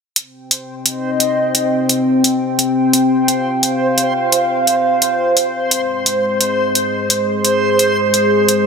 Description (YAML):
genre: half-time drum and bass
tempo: 173 BPM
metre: 4/4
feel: half-time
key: C minor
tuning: A4 = 438 Hz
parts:
  - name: dark analog pad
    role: sustained chords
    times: 0.2-8.7 s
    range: Ab3 to G5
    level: -15 LUFS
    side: left 1 dB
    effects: chorus
  - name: electronic hi-hat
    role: drums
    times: 0.2-8.6 s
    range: none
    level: -14 LUFS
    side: equal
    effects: overdrive
  - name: backwards swelling texture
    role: texture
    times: 1.0-8.7 s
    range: C5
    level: -20 LUFS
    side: right 2 dB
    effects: built-in reverb
room: moderate echo chamber reverb, RT60 1.5 s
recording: none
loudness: -13 LUFS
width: side -5 dB against mid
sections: 0.2-8.7 A section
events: none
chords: 0.2 Cm; 5.7 Ab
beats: | 0.16 0.51 0.86 1.21 | 1.55 1.90 2.25 2.59 | 2.94 3.29 3.63 3.98 | 4.33 4.67 5.02 5.37 | 5.71 6.06 6.41 6.75 | 7.10 7.45 7.79 8.14 | 8.49